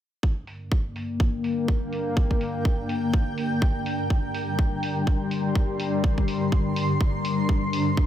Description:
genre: bass house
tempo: 124 BPM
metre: 4/4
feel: swing 58% on 16ths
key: G minor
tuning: A4 = 440 Hz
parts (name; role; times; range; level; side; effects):
- sweeping resonant pad; sustained chords; 0.2-8.1 s; G2 to Bb3; -27 LUFS; left 2 dB; chorus, tremolo, sidechain pumping
- electronic kick drum; drums; 0.2-8.1 s; none; -22 LUFS; equal; studio reverb
- granular cloud pad; texture; 1.5-8.1 s; D4 to C6; -31 LUFS; right 1 dB; built-in reverb, sidechain pumping
- electronic hi-hat; drums; 0.5-7.8 s; none; -38 LUFS; right 2 dB; low-pass filter on hats, studio reverb
room: moderate cathedral reverb, RT60 6.4 s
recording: dreamy mix soaked in reverb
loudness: -23 LUFS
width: side -11 dB against mid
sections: 0.2-8.1 A section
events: none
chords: 0.2 Gm

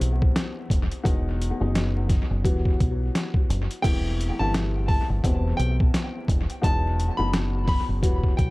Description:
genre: hip hop, boom-bap hip-hop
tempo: 86 BPM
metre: 4/4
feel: swing 58% on 16ths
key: unclear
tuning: A4 = 440 Hz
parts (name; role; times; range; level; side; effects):
- dark upright piano; accompaniment; 0.0-8.5 s; E2 to F#4; -30 LUFS; left 2 dB; cassette tape, high-pass filter, low-pass filter, analog delay
- deep dub fingered electric bass; bass; 0.0-8.5 s; E1 to B1; -25 LUFS; equal; none
- boom bap sampler-style drum kit; drums; 0.0-8.5 s; crash cymbal, hi-hat, kick drum, snare drum; -24 LUFS; equal; none
- nylon-string guitar; melody; 3.8-8.5 s; G5 to B5; -31 LUFS; equal; high-pass filter, low-pass filter, analog delay
room: little or no reverb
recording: echo-heavy mix, vinyl crackle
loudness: -21 LUFS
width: side -21 dB against mid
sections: 0.0-3.8 A section; 3.8-8.5 A section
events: none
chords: 0.0 Cmaj7; 1.1 B/E; 2.4 Emadd9; 3.8 Am7/E; 5.2 Cmaj7/E; 6.6 B/E

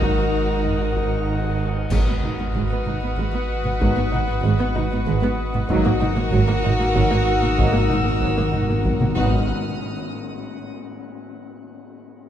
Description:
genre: cinematic, suspense film score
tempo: 95 BPM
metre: 3/4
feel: straight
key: G# minor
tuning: A4 = 441 Hz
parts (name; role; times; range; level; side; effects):
- dark chamber violin section; melody; 0.0-9.5 s; A#4 to B4; -30 LUFS; equal; none
- warm chamber violin section; second line; 0.0-9.5 s; F#4; -27 LUFS; left 2 dB; none
- dark chamber viola section; accompaniment; 0.0-9.5 s; F#3 to D#4; -28 LUFS; right 1 dB; none
- drifting glass-harmonics texture; sustained chords; 0.0-9.5 s; D#4 to F#5; -31 LUFS; left 1 dB; chorus, built-in reverb
- mellow French horn section; sustained chords; 0.0-9.4 s; A#3 to D#4; -32 LUFS; left 4 dB; none
- warm trombone section; sustained chords; 0.0-9.4 s; D#3 to F#3; -32 LUFS; right 4 dB; none
- dark chamber cello section; bass; 0.0-9.5 s; G#2; -27 LUFS; right 2 dB; none
- warm chamber double bass section; bass; 0.0-9.5 s; G#1; -27 LUFS; right 5 dB; none
- warm sub bass; drone; 0.0-9.5 s; G#1; -27 LUFS; equal; none
- taiko ensemble; drums; 0.0-10.4 s; none; -28 LUFS; equal; none
- warm chamber violin section; texture; 0.0-10.7 s; A#5 to F#6; -35 LUFS; left 4 dB; none
- clash cymbals, concert bass drum and tam-tam; percussion; 1.9-3.1, 9.2-11.7 s; none; -31 LUFS; left 1 dB; none
- timpani; percussion; 5.7-9.5 s; G#2; -27 LUFS; equal; none
room: moderate concert hall reverb, RT60 2.4 s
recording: dark, warm production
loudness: -18 LUFS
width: side -10 dB against mid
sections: 0.0-1.9 A section; 1.9-9.5 B section; 9.5-11.4 C section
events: band accent 1.9-2.5, 9.5-10.1; timpani fill 5.7-9.5; drum fill 9.0-9.5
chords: 0.0 D#m/G#; 1.9 G#m7; 5.7 D#m/G#; 9.2 G#m7; 9.5 D#sus2

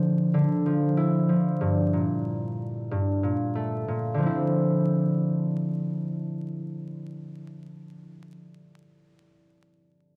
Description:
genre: hip hop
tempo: 93 BPM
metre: 4/4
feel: swing 54% on 16ths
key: D minor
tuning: A4 = 440 Hz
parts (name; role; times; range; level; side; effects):
- concert harp; accompaniment; 0.0-8.3 s; G2 to E4; -27 LUFS; equal; cassette tape, high-pass filter, low-pass filter
room: moderate studio reverb, RT60 0.6 s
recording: home recording on cassette, vinyl crackle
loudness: -26 LUFS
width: mono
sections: 0.0-4.2 A section; 4.2-6.8 B section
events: none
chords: 0.0 Dmadd9; 1.6 Gmadd9; 4.2 Dm9

